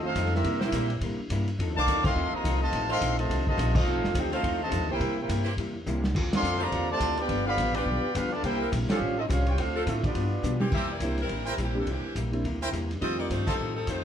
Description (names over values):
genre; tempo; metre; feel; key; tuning
jazz, big band swing; 210 BPM; 4/4; swing 60% on 8ths; C mixolydian from 10.7 s; A4 = 444 Hz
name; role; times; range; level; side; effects
clear trumpet section; melody; 0.0-10.6 s; B3 to D6; -29 LUFS; equal; none
warm trombone section; second line; 0.0-10.6 s; C3 to G4; -33 LUFS; right 1 dB; none
archtop guitar, miked and amplified; accompaniment; 0.0-14.0 s; F2 to A4; -35 LUFS; left 3 dB; none
upright bass; bass; 0.0-14.0 s; F1 to C3; -30 LUFS; equal; none
vintage drum kit; drums; 0.2-14.0 s; crash cymbal, hi-hat, kick drum, ride cymbal, snare drum, toms; -33 LUFS; equal; none
warm saxophone section; sustained chords; 0.6-11.0 s; E3 to Eb5; -36 LUFS; left 1 dB; none
bright saxophone section; melody; 10.7-14.0 s; E3 to E5; -33 LUFS; left 1 dB; none
clear grand piano; accompaniment; 11.0-13.8 s; G3 to G4; -34 LUFS; right 1 dB; none
brilliant trumpet section; stabs; 11.5-13.5 s; E4 to A5; -34 LUFS; right 2 dB; none
room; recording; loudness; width
moderate large studio reverb, RT60 0.9 s; heard from further back in the room; -25 LUFS; side -9 dB against mid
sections
0.0-10.7 A section; 10.7-14.0 B section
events
band accent 2.0, 3.7, 6.3, 8.9, 13.4; drum fill 5.9, 10.4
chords
0.4 C7; 1.6 F7; 5.0 C7; 6.1 Dm7; 7.3 G7; 8.4 C7; 9.0 A7alt; 9.6 Dm7; 10.1 G7; 10.7 C7; 13.0 F7